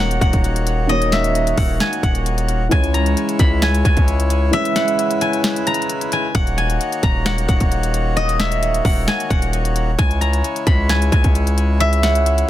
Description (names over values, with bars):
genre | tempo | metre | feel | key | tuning
hip hop, trap | 132 BPM | 4/4 | half-time | Eb phrygian | A4 = 440 Hz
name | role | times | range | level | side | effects
steel-string zither | melody | 0.0-12.5 s | Eb5 to Cb6 | -21 LUFS | equal | ping-pong delay
dark concert grand piano | accompaniment | 0.0-6.4 s | Eb3 to Db5 | -23 LUFS | equal | none
accordion | sustained chords | 0.0-12.5 s | Db3 to Db5 | -25 LUFS | left 2 dB | none
distorted 808-style bass | bass | 0.0-12.4 s | Eb1 to Db2 | -19 LUFS | equal | distortion
trap drum kit | drums | 0.1-12.5 s | hi-hat, kick drum, snare drum | -19 LUFS | equal | none
room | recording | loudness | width
small room ambience | dense, heavily limited modern master | -15 LUFS | side -13 dB against mid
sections
0.0-6.3 A section; 6.3-12.5 A section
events
break 4.5-6.3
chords
0.0 Ebm7; 2.7 Dbm; 6.3 Ebm7; 10.0 Dbm